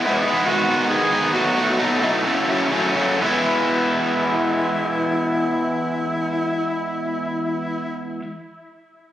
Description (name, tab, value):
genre	rock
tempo	120-143 BPM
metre	4/4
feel	straight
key	E major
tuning	A4 = 440 Hz
part	clear tenor saxophone	melody	0.0-8.0 s	D#4 to G#4	-24 LUFS	equal	tape echo
part	crunchy overdriven guitar	riff	0.0-8.2 s	F#2 to E4	-20 LUFS	equal	none
room	moderate studio reverb, RT60 0.6 s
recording	recorded on a phone in the room, studio reverb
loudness	-18 LUFS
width	side -12 dB against mid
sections	0.0-3.2 A section; 3.2-7.2 B section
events	slowing down 0.0-3.2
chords	0.5 G#m7; 1.3 B7; 2.2 F#m7; 3.2 E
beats	0.05 0.47 0.90 | 1.34 1.79 2.25 2.72 | 3.21 3.71 4.21 4.70 | 5.20 5.70 6.20 6.70